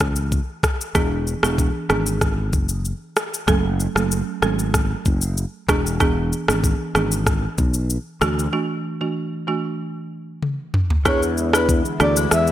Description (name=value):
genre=afrobeats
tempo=95 BPM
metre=4/4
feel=straight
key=E mixolydian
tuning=A4 = 438 Hz
part: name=sustaining fretless electric bass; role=bass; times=0.0-12.5 s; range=E1 to E2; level=-22 LUFS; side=equal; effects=analog chorus
part: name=afro-pop drum kit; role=drums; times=0.0-12.5 s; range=kick drum, rim click, shaker, toms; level=-21 LUFS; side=equal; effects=none
part: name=folk marimba with medium mallets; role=accompaniment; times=0.9-12.3 s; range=E3 to A4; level=-24 LUFS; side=right 3 dB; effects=none
part: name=breathy flute-like synth lead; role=melody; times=11.1-12.5 s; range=B4 to E5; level=-22 LUFS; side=equal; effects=chorus, tremolo, digital delay
part: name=warm analog pad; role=sustained chords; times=11.1-12.5 s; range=D3 to E4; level=-29 LUFS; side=left 2 dB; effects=chorus
part: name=agogo bells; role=percussion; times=11.1-12.3 s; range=none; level=-29 LUFS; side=left 10 dB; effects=none
room=light reverb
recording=bright 1980s-style digital production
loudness=-18 LUFS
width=side -13 dB against mid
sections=0.0-11.1 A section; 11.1-12.5 B section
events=break 8.5-11.1; drum fill 10.4-11.1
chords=0.0 N.C.; 1.0 E7; 3.5 F#m; 5.7 E7; 8.2 Dadd9; 11.1 E7